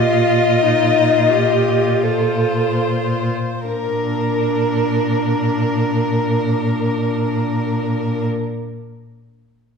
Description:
classical, slow romantic movement for string quartet; free time; Bb major; A4 = 440 Hz
rich violin; melody; 0.0-8.3 s; Bb4 to Eb5; -21 LUFS; left 6 dB
rich violin; second line; 0.0-8.3 s; F4 to Bb4; -23 LUFS; right 2 dB
rich viola; accompaniment; 0.0-8.3 s; D4 to A4; -22 LUFS; right 4 dB
rich cello; bass; 0.0-8.3 s; Bb2; -20 LUFS; left 1 dB
wet recital hall reverb, RT60 1.4 s; heard from further back in the room; -15 LUFS; side -6 dB against mid
0.0-3.7 A section; 3.7-8.4 B section
slowing down 0.0-3.7
0.0 F5/Bb; 3.7 Bb

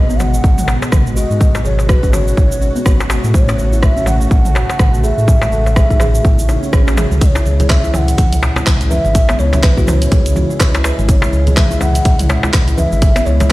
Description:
afro house; 124 BPM; 4/4; swing 59% on 16ths; C# minor; A4 = 440 Hz
breathy mellow bass bansuri; melody; 0.0-13.5 s; B4 to G#5; -21 LUFS; equal; tape echo
warm analog pad; sustained chords; 0.0-13.5 s; B2 to F#4; -24 LUFS; left 1 dB; lush chorus, sidechain pumping
buzzing kalimba; arpeggios; 0.0-13.5 s; F#3 to C#5; -23 LUFS; equal; sidechain pumping, tape echo
round analog bass; bass; 0.0-13.5 s; G#1 to A2; -16 LUFS; equal; sidechain pumping
house drum kit; drums; 0.1-13.5 s; handclaps, hi-hat, rim click, shaker, toms; -21 LUFS; right 1 dB
darbuka; percussion; 0.2-13.5 s; -22 LUFS; left 2 dB
electronic kick drum; drums; 0.4-13.1 s; -12 LUFS; equal
swell; sound effects; 6.4-7.2 s; -27 LUFS; right 5 dB
congas; percussion; 7.2-13.5 s; -21 LUFS; right 1 dB
digital ambience; played on a big sound system in a bare room, stone room reverb; -10 LUFS; side -18 dB against mid
0.0-13.5 A section
swell 6.4-7.2; drum fill 6.9-7.2
0.0 G#m7; 3.3 A6; 7.2 C#m

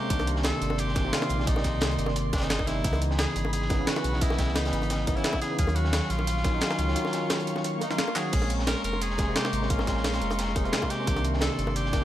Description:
liquid drum and bass; 175 BPM; 4/4; swing 53% on 16ths; A4 = 439 Hz
edgy tenor saxophone; melody; 0.0-12.0 s; D4 to Bb4; -33 LUFS; equal; vintage 12-bit sampler grit, dub echo
bell-like tine electric piano; accompaniment; 0.0-12.0 s; C3 to F5; -30 LUFS; equal; wide subtle chorus
airy breathy pad; sustained chords; 0.0-12.0 s; D5 to Db6; -37 LUFS; right 1 dB; chorus, sidechain pumping
warm sub bass; bass; 0.1-12.0 s; F1 to Eb2; -30 LUFS; equal; tube saturation
breakbeat sampler-style drum kit; drums; 0.1-12.0 s; crash cymbal, handclaps, hi-hat, snare drum; -31 LUFS; equal; studio reverb
crunchy breakbeat drum kit; drums; 0.1-12.0 s; hi-hat, snare drum; -37 LUFS; equal; high-pass filter on hats, studio reverb, high-pass filter on snare, high-pass filter on room
electronic kick drum; drums; 0.1-12.0 s; -28 LUFS; equal; studio reverb
bongos; percussion; 0.2-12.0 s; -37 LUFS; left 1 dB
swell; sound effects; 7.8-8.3 s; -36 LUFS; equal
light reverb, studio reverb; -24 LUFS; side -12 dB against mid
0.0-12.0 A section
swell 7.8-8.3; drum fill 8.2
0.1 Cm9; 2.8 Dbm9; 5.6 Ebm9; 8.3 Bbm9; 11.1 Cm9

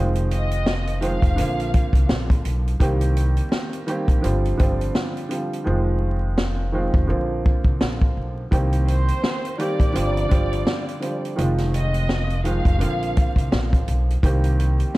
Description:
hip hop, boom-bap hip-hop; 84 BPM; 4/4; swing 58% on 16ths; C minor; A4 = 440 Hz
warm upright piano; accompaniment; 0.0-15.0 s; D3 to G4; -26 LUFS; right 2 dB; high-pass filter, low-pass filter
upright bass; bass; 0.0-14.8 s; F1 to C2; -22 LUFS; equal
vintage drum kit; drums; 0.2-15.0 s; hi-hat, kick drum, snare drum; -21 LUFS; equal
warm studio violin section; melody; 0.3-2.1, 8.9-13.5 s; C5 to F5; -29 LUFS; equal; high-pass filter, low-pass filter, ping-pong delay
little or no reverb; vinyl crackle; -19 LUFS; side -19 dB against mid
0.0-15.0 A section
hi-hats muted 5.7-8.5
0.0 Fm7; 1.4 Bbadd9; 2.8 Cm7; 4.2 G7sus4; 5.7 Fm7; 7.1 Bbadd9; 8.5 Cm7; 9.9 G7sus4; 11.4 Fm7; 12.8 Bbadd9; 14.2 Cm7

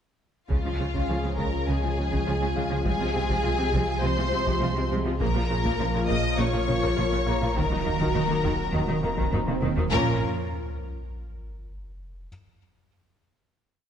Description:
cinematic, hybrid orchestral and electronic film score; 102 BPM; 4/4; straight; Bb minor; A4 = 439 Hz
rich symphonic violin section; melody; 0.5-10.2 s; F5 to Eb6; -33 LUFS; left 3 dB
warm symphonic violin section; second line; 0.5-10.2 s; F4 to Eb5; -32 LUFS; left 2 dB
rich symphonic viola section; accompaniment; 0.5-10.2 s; C3 to F4; -34 LUFS; right 1 dB
clear trombone section; sustained chords; 0.5-10.2 s; Bb2 to Gb3; -37 LUFS; right 3 dB
phased analog pad; sustained chords; 0.5-10.2 s; Eb3 to Bb4; -34 LUFS; equal; phaser, chorus
warm French horn section; sustained chords; 0.5-10.2 s; Ab3 to F4; -35 LUFS; left 4 dB
tight sequenced synth; arpeggios; 0.5-9.9 s; Db3 to Bb4; -35 LUFS; left 1 dB
rich symphonic cello section; bass; 0.5-10.2 s; Bb2 to Eb3; -33 LUFS; right 2 dB
sub bass with octave; bass; 0.5-10.2 s; Eb1 to Db2; -32 LUFS; equal
warm symphonic double bass section; bass; 0.5-10.2 s; Bb1 to Eb2; -33 LUFS; right 4 dB
taiko ensemble; drums; 0.5-10.1 s; -32 LUFS; equal
felt-muted upright piano; texture; 1.1-9.9 s; Ab4 to Bb5; -39 LUFS; left 2 dB
swell and sub drop; sound effects; 8.7-12.3 s; -35 LUFS; right 2 dB
moderate scoring stage reverb, RT60 1.9 s; dark, warm production; -23 LUFS; side -8 dB against mid
0.5-9.9 theme; 9.9-12.3 final chord
swell 8.7-9.9; drum fill 9.3-9.9; impact 9.9-12.3
0.5 Db; 2.9 Fm/C; 5.2 Bbm; 7.6 Ebm; 9.9 Bbm

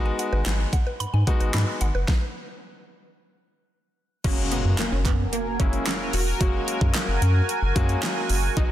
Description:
dance-pop; 111 BPM; 4/4; straight; A4 = 438 Hz
clear baby grand piano; accompaniment; 0.0-8.7 s; F#3 to F#4; -31 LUFS; left 3 dB; sidechain pumping
mallet-like synth pluck; arpeggios; 0.0-2.1 s; B4 to B5; -34 LUFS; right 1 dB; chorus, phaser, sidechain pumping, tape echo
round analog bass; bass; 0.0-8.7 s; E1 to G#2; -23 LUFS; equal; sidechain pumping
pop drum kit; drums; 0.2-8.7 s; crash cymbal, handclaps, hi-hat, kick drum, snare drum; -25 LUFS; equal; overdrive
wide unison pluck; melody; 4.2-8.7 s; A#3 to F#4; -31 LUFS; right 2 dB; ensemble chorus
sweeping resonant pad; sustained chords; 4.2-8.7 s; F#4 to G#5; -30 LUFS; right 1 dB; chorus, sidechain pumping
impact; sound effects; 4.2-6.4 s; -34 LUFS; equal
group handclap; percussion; 4.8-8.2 s; -38 LUFS; right 8 dB
light reverb; dense, heavily limited modern master; -21 LUFS; side -12 dB against mid
0.0-4.2 A section; 4.2-8.7 B section
stop 2.1-4.2; impact 4.2-6.4
0.0 G#m7; 4.2 F#add9

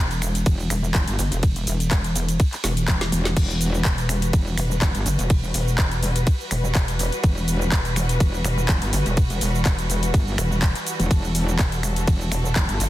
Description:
bass house; 124 BPM; 4/4; swing 54% on 16ths; E minor; A4 = 440 Hz
pulsing pluck wobble bass; bass; 0.0-12.9 s; E1 to G1; -23 LUFS; equal; chorus, tube saturation, sidechain pumping
garage drum kit; drums; 0.1-12.9 s; cabasa, crash cymbal, finger snaps, handclaps, hi-hat, ride cymbal, snare drum, toms; -26 LUFS; equal
metallic wobble bass; bass; 0.5-12.8 s; E1 to G1; -23 LUFS; equal; chorus, overdrive, sidechain pumping
electronic kick drum; drums; 0.5-12.7 s; -19 LUFS; equal
dark symphonic string section; sustained chords; 3.4-12.9 s; E3 to B4; -30 LUFS; left 1 dB; sidechain pumping
little or no reverb; dense, heavily limited modern master; -19 LUFS; side -15 dB against mid
0.0-12.9 A section
drum fill 2.6-3.4
0.0 Emadd9

